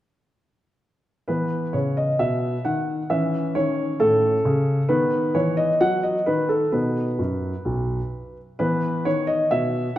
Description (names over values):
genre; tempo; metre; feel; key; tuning
classical-period piano sonatina; 131 BPM; 4/4; straight; unclear; A4 = 439 Hz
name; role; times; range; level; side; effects
warm concert grand piano; solo; 1.3-10.0 s; B1 to F#5; -20 LUFS; equal; none
room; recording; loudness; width
wet recital hall reverb, RT60 1.7 s; dark, warm production; -20 LUFS; side -13 dB against mid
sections
1.3-10.0 A section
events
none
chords
1.3 E5; 3.1 A; 4.9 B/D#; 6.7 B; 8.6 E5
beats
| 1.28 1.74 2.20 2.65 | 3.10 3.55 4.00 4.45 | 4.90 5.35 5.80 6.26 | 6.72 7.19 7.66 8.13 | 8.59 9.05 9.51 9.97